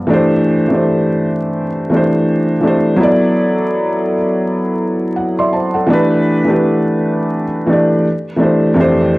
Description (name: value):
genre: hip hop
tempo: 83 BPM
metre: 4/4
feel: swing 62% on 16ths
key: unclear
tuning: A4 = 442 Hz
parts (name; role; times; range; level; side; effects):
- felt-muted upright piano; solo; 0.0-9.2 s; F2 to C6; -12 LUFS; equal; cassette tape
room: wet spring reverb, RT60 1.1 s, small room ambience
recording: home recording on cassette, vinyl crackle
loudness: -12 LUFS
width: side -20 dB against mid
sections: 0.1-9.2 A section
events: felt piano fill 4.8-5.9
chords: 0.1 D5; 3.0 D; 5.9 G; 8.1 C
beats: | 0.10 0.82 1.54 2.27 | 2.99 3.71 4.44 5.16 | 5.88 6.61 7.33 8.05 | 8.77